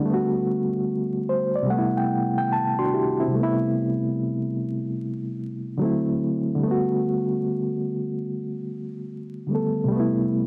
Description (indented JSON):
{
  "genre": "hip hop",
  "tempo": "73 BPM",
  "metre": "4/4",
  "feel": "swing 64% on 16ths",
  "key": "A dorian",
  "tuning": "A4 = 440 Hz",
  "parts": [
    { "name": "barky reed electric piano", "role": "solo", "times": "0.0-10.5 s", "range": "C3 to C6", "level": "-25 LUFS", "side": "equal", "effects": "overdrive, fast tremolo, cassette tape" }
  ],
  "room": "moderate booth ambience, RT60 0.2 s",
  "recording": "home recording on cassette, vinyl crackle",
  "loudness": "-25 LUFS",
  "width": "mono",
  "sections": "0.0-3.3 A section; 3.3-10.5 B section",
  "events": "reed electric piano fill 0.9-3.3",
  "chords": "0.0 Gmaj7; 1.7 Am7; 5.8 D7; 6.6 Gmaj7; 9.9 Am7",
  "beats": "| 0.04 0.87 1.69 2.51 | 3.33 4.15 4.98 5.80 | 6.62 7.44 8.26 9.09 | 9.91"
}